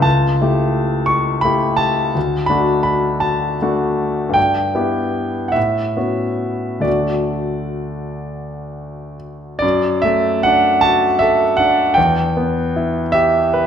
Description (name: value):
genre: classical, romantic nocturne for solo piano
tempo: 42-60 BPM (dotted quarters)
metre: 12/8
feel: rubato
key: D major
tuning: A4 = 439 Hz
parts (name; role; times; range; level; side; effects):
- clear concert grand piano; solo; 0.0-13.7 s; C#2 to C#6; -15 LUFS; equal; none
room: wet recital hall reverb, RT60 1.7 s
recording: minimal, uncompressed stereo recording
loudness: -14 LUFS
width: side -8 dB against mid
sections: 0.0-9.6 A section; 9.6-13.7 B section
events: none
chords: 0.0 A7/C#; 2.2 D; 4.4 Em/G; 5.6 A69; 6.9 D; 9.6 D/F#; 12.0 Em